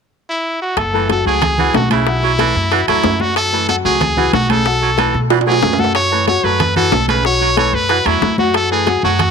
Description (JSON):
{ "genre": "latin, salsa", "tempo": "185 BPM", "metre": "4/4", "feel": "straight", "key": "unclear", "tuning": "A4 = 440 Hz", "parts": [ { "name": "brilliant trumpet", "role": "melody", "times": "0.3-9.3 s", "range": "E4 to C#5", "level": "-16 LUFS", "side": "equal", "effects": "none" }, { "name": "upright bass", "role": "bass", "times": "0.8-9.3 s", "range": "F#1 to B2", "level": "-20 LUFS", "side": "equal", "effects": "none" }, { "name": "bongos", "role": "percussion", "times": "0.8-9.3 s", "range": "none", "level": "-23 LUFS", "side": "left 14 dB", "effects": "none" }, { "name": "congas", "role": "percussion", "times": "0.8-9.3 s", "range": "none", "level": "-22 LUFS", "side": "equal", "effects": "none" }, { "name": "timbales", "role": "percussion", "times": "0.8-9.3 s", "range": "none", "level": "-21 LUFS", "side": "right 15 dB", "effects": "none" }, { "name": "raspy baritone saxophone", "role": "second line", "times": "0.9-9.2 s", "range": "C#3 to F#3", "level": "-20 LUFS", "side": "right 12 dB", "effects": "none" }, { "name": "warm upright piano", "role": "accompaniment", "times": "0.9-9.3 s", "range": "F#3 to F#6", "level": "-21 LUFS", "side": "left 12 dB", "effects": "none" } ], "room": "light reverb, small room reverb", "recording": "1960s-style stereo with parts hard left and right", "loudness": "-12 LUFS", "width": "side -6 dB against mid", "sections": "0.8-9.3 A section", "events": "drum fill 5.3-6.0", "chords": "0.0 N.C.; 0.8 F#m7; 2.1 B7sus4", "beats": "0.12 0.45 | 0.77 1.10 1.42 1.75 | 2.07 2.39 2.72 3.04 | 3.37 3.69 4.01 4.34 | 4.66 4.98 5.31 5.63 | 5.96 6.28 6.60 6.93 | 7.25 7.58 7.90 8.22 | 8.55 8.87 9.20" }